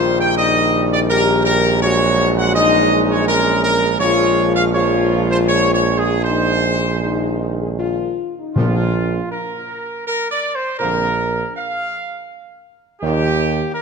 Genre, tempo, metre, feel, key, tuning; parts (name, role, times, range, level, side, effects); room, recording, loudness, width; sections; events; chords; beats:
classical; 80 BPM; 3/4; uneven beats; Bb major from 8.6 s; A4 = 441 Hz
dark trumpet section; melody; 0.0-13.8 s; F4 to G5; -18 LUFS; right 1 dB
bright trombone section; sustained chords; 0.0-13.3 s; Bb2 to Ab3; -26 LUFS; right 5 dB
warm French horn section; sustained chords; 0.0-13.3 s; Bb3 to Ab4; -21 LUFS; left 9 dB
clear tuba; bass; 0.0-13.6 s; Bb1 to Eb2; -20 LUFS; right 5 dB
timpani; percussion; 8.6-9.7 s; Bb2; -20 LUFS; left 2 dB
moderate scoring stage reverb, RT60 1.8 s; -14 LUFS; side -5 dB against mid
0.0-8.6 A section; 8.6-13.8 B section
0.0 Eb/Bb; 1.8 Gbadd9/Bb; 4.0 Bbm7; 6.2 Ab/Bb; 8.6 Bbadd9; 13.0 Eb
0.38 1.10 | 1.82 2.55 3.28 | 4.01 4.74 5.49 | 6.25 7.02 7.79 | 8.56 9.32 10.06 | 10.80 11.56 12.30 | 13.03 13.75